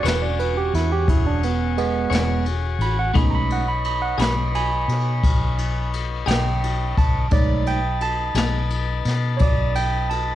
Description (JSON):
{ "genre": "slow blues", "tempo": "58 BPM (dotted quarters)", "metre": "12/8", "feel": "straight", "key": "unclear", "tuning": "A4 = 437 Hz", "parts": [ { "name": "barky tine electric piano", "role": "accompaniment", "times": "0.0-10.3 s", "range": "G#3 to B5", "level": "-24 LUFS", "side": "right 7 dB", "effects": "cassette tape" }, { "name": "clean electric guitar", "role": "accompaniment", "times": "0.0-8.6 s", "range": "B2 to C#5", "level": "-26 LUFS", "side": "left 9 dB", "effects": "tremolo, cassette tape" }, { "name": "tonewheel organ", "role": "sustained chords", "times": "0.0-10.3 s", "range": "D#4 to A5", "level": "-29 LUFS", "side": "left 9 dB", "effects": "wide subtle chorus, cassette tape" }, { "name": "vintage muted fingered electric bass", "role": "bass", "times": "0.0-10.3 s", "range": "E1 to B2", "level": "-23 LUFS", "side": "left 1 dB", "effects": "none" }, { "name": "jazz brush drum kit", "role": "drums", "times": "0.1-10.3 s", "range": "kick drum, ride cymbal, snare drum", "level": "-24 LUFS", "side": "left 1 dB", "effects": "cassette tape" } ], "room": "little or no reverb", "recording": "home recording on cassette", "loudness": "-19 LUFS", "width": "side -13 dB against mid", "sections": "0.0-10.3 A section", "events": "tine electric piano solo 0.0-10.3", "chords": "0.0 E13; 3.2 B13" }